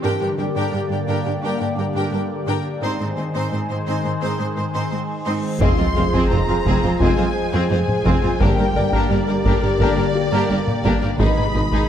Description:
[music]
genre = cinematic, hybrid orchestral and electronic film score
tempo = 86 BPM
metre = 4/4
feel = straight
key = G phrygian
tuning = A4 = 440 Hz
[part]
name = rich symphonic violin section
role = second line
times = 0.0-11.9 s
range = C4 to C6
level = -27 LUFS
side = left 4 dB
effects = none
[part]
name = rich chamber viola section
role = accompaniment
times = 0.0-11.9 s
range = Bb3 to Bb4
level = -27 LUFS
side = right 2 dB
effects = none
[part]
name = phased analog pad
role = sustained chords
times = 0.0-11.9 s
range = Cb3 to Eb5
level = -24 LUFS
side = left 1 dB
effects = phaser, chorus
[part]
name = rich symphonic cello section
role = bass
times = 0.0-11.8 s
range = F2 to Ab2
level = -24 LUFS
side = right 2 dB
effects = none
[part]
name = dark grand piano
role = texture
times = 0.0-11.9 s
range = Bb3 to Ab5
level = -33 LUFS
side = left 3 dB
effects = none
[part]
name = reverse cymbal and sub drop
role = sound effects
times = 5.5-8.4 s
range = none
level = -27 LUFS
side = left 1 dB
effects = none
[part]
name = warm symphonic violin section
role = melody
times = 5.6-11.9 s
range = D5 to C6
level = -26 LUFS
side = left 2 dB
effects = none
[part]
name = mellow French horn section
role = sustained chords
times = 5.6-11.4 s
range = Cb3 to F4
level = -28 LUFS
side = left 4 dB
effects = none
[part]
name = mellow tuba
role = bass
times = 5.6-11.6 s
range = F1 to Ab1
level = -27 LUFS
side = right 2 dB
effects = none
[part]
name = rich studio double bass section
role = bass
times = 5.6-11.6 s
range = F1 to Ab1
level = -25 LUFS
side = right 2 dB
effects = none
[part]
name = solo taiko drums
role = drums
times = 5.6-11.9 s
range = none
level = -22 LUFS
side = equal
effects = none
[sound]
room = moderate scoring stage reverb, RT60 1.8 s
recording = dark, warm production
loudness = -17 LUFS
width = side -9 dB against mid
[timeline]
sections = 0.0-5.6 A section; 5.6-11.9 B section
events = build-up 0.0-5.6; reverse cymbal 5.5; impact 5.6-8.4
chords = 0.0 Gm; 2.8 Ab; 5.6 Fm; 8.4 Gm; 11.2 Abm

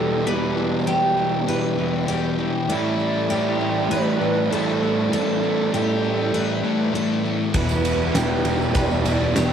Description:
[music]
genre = rock, shoegaze and dream pop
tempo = 99 BPM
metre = 4/4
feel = straight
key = E minor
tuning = A4 = 439 Hz
[part]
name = pure sine lead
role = melody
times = 0.0-9.5 s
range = G4 to D5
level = -28 LUFS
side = equal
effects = chorus, tape echo
[part]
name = picked twelve-string acoustic guitar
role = arpeggios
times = 0.0-9.5 s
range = G4 to B4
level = -27 LUFS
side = equal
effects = lush chorus, cassette tape, tape echo
[part]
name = crunchy overdriven guitar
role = riff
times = 0.0-9.5 s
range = E2 to A3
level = -28 LUFS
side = equal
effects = cassette tape
[part]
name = raw garage guitar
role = riff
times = 0.0-9.5 s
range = E2 to E4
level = -25 LUFS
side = right 9 dB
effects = overdrive, reverse reverb, cassette tape
[part]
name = thick fuzz guitar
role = riff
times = 0.0-9.5 s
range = E2 to A3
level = -25 LUFS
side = left 7 dB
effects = distortion, analog chorus, cassette tape
[part]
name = vintage muted picked electric bass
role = bass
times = 7.5-9.5 s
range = E1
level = -25 LUFS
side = equal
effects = none
[part]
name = huge arena drum kit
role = drums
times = 7.5-9.5 s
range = kick drum, ride cymbal, snare drum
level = -24 LUFS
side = right 1 dB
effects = cassette tape
[part]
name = tambourine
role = percussion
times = 7.5-9.5 s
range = none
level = -38 LUFS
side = right 10 dB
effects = none
[sound]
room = light reverb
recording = home recording on cassette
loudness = -19 LUFS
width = side -8 dB against mid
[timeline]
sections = 0.0-9.5 A section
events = none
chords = 0.0 Em; 2.7 A7sus4; 7.5 Em7

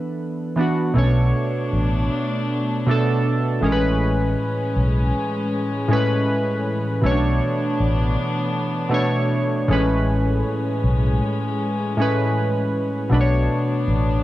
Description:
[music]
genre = hip hop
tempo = 79 BPM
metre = 4/4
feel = swing 55% on 16ths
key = unclear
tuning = A4 = 440 Hz
[part]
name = warm analog keys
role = accompaniment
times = 0.0-14.2 s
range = A2 to C#5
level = -20 LUFS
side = equal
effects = chorus, cassette tape, low-pass filter
[part]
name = warm chamber string section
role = sustained chords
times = 1.0-14.2 s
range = E3 to D4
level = -28 LUFS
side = left 2 dB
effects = low-pass filter
[part]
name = vintage muted fingered electric bass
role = bass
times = 1.0-14.2 s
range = A1 to B1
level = -20 LUFS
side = equal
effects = none
[sound]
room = light reverb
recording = none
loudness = -18 LUFS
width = side -15 dB against mid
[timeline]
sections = 1.0-14.2 A section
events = none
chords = 0.0 E7sus4; 1.0 Bm9; 3.6 Amaj9; 7.0 Bm9; 9.7 Amaj9; 13.1 Bm9

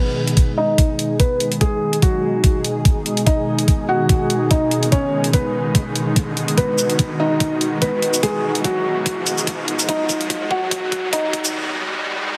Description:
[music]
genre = heavy wobble dubstep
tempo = 145 BPM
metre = 4/4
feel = swing 55% on 16ths, half-time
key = G# minor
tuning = A4 = 440 Hz
[part]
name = felt-muted upright piano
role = melody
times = 0.0-11.5 s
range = F#3 to F#5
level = -24 LUFS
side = equal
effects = low-pass filter, tape echo
[part]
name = supersaw chords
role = sustained chords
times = 0.0-12.4 s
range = B2 to G#4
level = -25 LUFS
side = equal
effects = sidechain pumping, low-pass filter
[part]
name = riser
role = sound effects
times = 0.0-12.4 s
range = none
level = -32 LUFS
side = equal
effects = none
[part]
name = electronic hi-hat and shaker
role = drums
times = 0.3-11.5 s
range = none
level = -26 LUFS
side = equal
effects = none
[part]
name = electronic kick drum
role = drums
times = 0.4-11.4 s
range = none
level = -19 LUFS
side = equal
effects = none
[sound]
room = moderate lush hall reverb, RT60 2.2 s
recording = heavily compressed radio sound, high-pass filter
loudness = -19 LUFS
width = mono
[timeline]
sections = 0.0-12.4 A section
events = build-up 0.0-12.4; riser 0.0-12.4; filter sweep on supersaw synth 0.0-12.4; filter sweep on felt piano 0.0-12.4; filter sweep 0.0-12.4; drum fill 6.6-11.5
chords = 0.0 G#m

